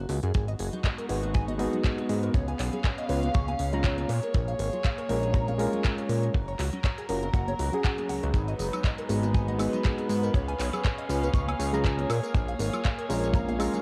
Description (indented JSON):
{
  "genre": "nu-disco, nu disco",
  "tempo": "120 BPM",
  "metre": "4/4",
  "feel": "swing 56% on 16ths",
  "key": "G# dorian",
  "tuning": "A4 = 440 Hz",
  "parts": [
    { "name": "direct-recorded clean electric guitar", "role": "riff", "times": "0.0-13.8 s", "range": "C#4 to C#6", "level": "-40 LUFS", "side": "equal", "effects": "ensemble chorus, cassette tape, tape echo" },
    { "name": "fat analog bass", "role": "bass", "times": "0.0-13.7 s", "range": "F#1 to A#2", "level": "-32 LUFS", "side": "equal", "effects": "none" },
    { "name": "house drum kit", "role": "drums", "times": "0.1-13.8 s", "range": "handclaps, hi-hat, tambourine, woodblock", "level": "-39 LUFS", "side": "equal", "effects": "studio reverb, cassette tape" },
    { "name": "bongos and congas", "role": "percussion", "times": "0.1-13.8 s", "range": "none", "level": "-43 LUFS", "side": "equal", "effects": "none" },
    { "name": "warm chamber string section", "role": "sustained chords", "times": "0.3-13.8 s", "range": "F#3 to E#5", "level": "-36 LUFS", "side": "equal", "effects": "sidechain pumping, cassette tape" },
    { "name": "kick drum", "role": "drums", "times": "0.3-13.5 s", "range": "none", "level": "-28 LUFS", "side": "equal", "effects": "studio reverb, cassette tape" },
    { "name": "overdriven reed electric piano", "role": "accompaniment", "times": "1.1-13.8 s", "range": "F#3 to A#5", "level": "-34 LUFS", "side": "equal", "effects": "phaser, cassette tape, tape echo" }
  ],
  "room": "moderate spring reverb, RT60 2.0 s",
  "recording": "home recording on cassette",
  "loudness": "-28 LUFS",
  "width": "mono",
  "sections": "0.0-13.8 A section",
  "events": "filter sweep on reed electric piano 0.0-13.8",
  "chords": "0.3 G#m7; 2.3 C#7; 4.1 A#m7; 6.3 F#; 8.3 G#m7; 10.3 C#7; 12.1 A#m7",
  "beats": "| 0.34 0.84 1.34 1.84 | 2.35 2.85 3.35 3.85 | 4.34 4.84 5.34 5.84 | 6.34 6.84 7.34 7.84 | 8.35 8.85 9.35 9.85 | 10.35 10.85 11.35 11.85 | 12.35 12.85 13.35"
}